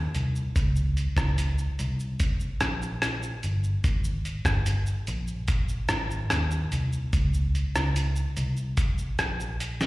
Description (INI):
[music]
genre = indie pop, bedroom pop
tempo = 73 BPM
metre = 4/4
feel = straight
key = unclear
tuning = A4 = 440 Hz
[part]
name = vintage muted picked electric bass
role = bass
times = 0.0-9.8 s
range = G1 to Eb2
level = -27 LUFS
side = equal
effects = none
[part]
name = dusty soul sampler-style drum kit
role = drums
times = 0.1-9.9 s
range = hi-hat, kick drum, rim click, shaker, snare drum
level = -28 LUFS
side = equal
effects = none
[sound]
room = light reverb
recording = live gig heard through the venue's PA, recital hall reverb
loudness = -25 LUFS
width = side -19 dB against mid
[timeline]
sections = 0.0-9.9 A section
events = drum fill 9.6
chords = none